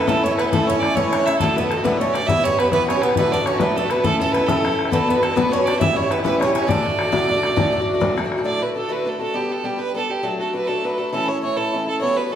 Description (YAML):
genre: celtic folk, Celtic slide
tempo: 136 BPM (dotted quarters)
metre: 12/8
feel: straight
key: D major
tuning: A4 = 440 Hz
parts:
  - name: clear fiddle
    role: melody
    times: 0.0-12.4 s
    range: G4 to E5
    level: -22 LUFS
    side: right 4 dB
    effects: none
  - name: Irish bouzouki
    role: second line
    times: 0.0-8.1 s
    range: A3 to E4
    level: -28 LUFS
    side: right 3 dB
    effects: none
  - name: mellow accordion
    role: second line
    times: 0.0-12.4 s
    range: G4 to E5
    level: -26 LUFS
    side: left 2 dB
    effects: none
  - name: picked swing-style acoustic guitar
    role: accompaniment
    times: 0.0-12.4 s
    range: D2 to B4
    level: -22 LUFS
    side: left 2 dB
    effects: none
  - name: bodhran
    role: percussion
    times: 0.0-8.5 s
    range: none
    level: -24 LUFS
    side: left 3 dB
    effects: none
room: wet recital hall reverb, RT60 1.6 s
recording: recorded in a church or concert hall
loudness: -17 LUFS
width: side -9 dB against mid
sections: 0.0-8.5 A section; 8.5-12.4 B section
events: none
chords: 0.0 A; 1.4 D; 2.3 Em; 3.2 D; 4.0 A; 4.9 Bm; 5.8 A7; 6.7 D; 9.3 G; 10.2 D/F#; 11.1 A